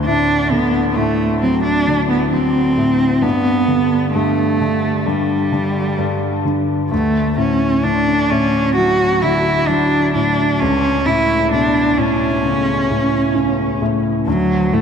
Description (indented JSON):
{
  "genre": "pop ballad",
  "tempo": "65 BPM",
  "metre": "4/4",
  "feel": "straight",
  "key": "D major",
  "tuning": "A4 = 440 Hz",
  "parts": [
    { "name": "warm concert grand piano", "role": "accompaniment", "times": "0.0-14.8 s", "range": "C#2 to F#3", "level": "-18 LUFS", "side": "left 2 dB", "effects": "analog chorus" },
    { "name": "rich cello", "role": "melody", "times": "0.1-14.8 s", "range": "F#3 to F#4", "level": "-16 LUFS", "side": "right 2 dB", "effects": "none" }
  ],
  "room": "wet huge ambient reverb, RT60 4.1 s",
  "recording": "dreamy mix soaked in reverb",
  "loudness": "-14 LUFS",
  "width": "side -7 dB against mid",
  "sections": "0.0-14.8 A section",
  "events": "none",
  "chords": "0.0 D7; 3.2 G; 6.9 D; 10.6 Aadd9/C#; 14.3 D"
}